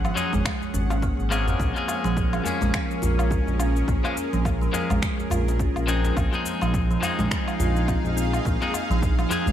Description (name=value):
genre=organic downtempo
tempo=105 BPM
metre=4/4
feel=swing 58% on 16ths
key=Bb minor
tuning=A4 = 440 Hz
part: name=bowed-like drone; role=sustained chords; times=0.0-9.5 s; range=Db4 to Gb5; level=-31 LUFS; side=equal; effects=built-in reverb, sidechain pumping
part: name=kalimba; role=arpeggios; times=0.0-9.5 s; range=F3 to F4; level=-29 LUFS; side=right 2 dB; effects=ping-pong delay
part: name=smooth gliding synth bass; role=bass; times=0.0-9.5 s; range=Ab1 to Bb1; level=-24 LUFS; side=equal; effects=none
part: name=electronic woodblock, cabasa and finger snaps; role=drums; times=0.0-9.5 s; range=none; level=-33 LUFS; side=left 2 dB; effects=overdrive, gated reverb
part: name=clean electric guitar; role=accompaniment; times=0.2-9.5 s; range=F3 to Ab4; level=-29 LUFS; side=left 3 dB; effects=sidechain pumping, ping-pong delay
part: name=djembe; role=percussion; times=0.2-9.5 s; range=none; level=-33 LUFS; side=equal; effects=none
part: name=electronic kick drum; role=drums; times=0.5-9.2 s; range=none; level=-28 LUFS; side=equal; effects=overdrive
room=light reverb, digital ambience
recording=bright 1980s-style digital production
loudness=-21 LUFS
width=side -10 dB against mid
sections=0.0-1.6 A section; 1.6-9.5 B section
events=none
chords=0.0 Ab7sus4; 1.6 Bbm7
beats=0.45 1.02 | 1.60 2.17 2.74 3.31 | 3.88 4.45 5.03 5.60 | 6.17 6.74 7.31 7.88 | 8.45 9.03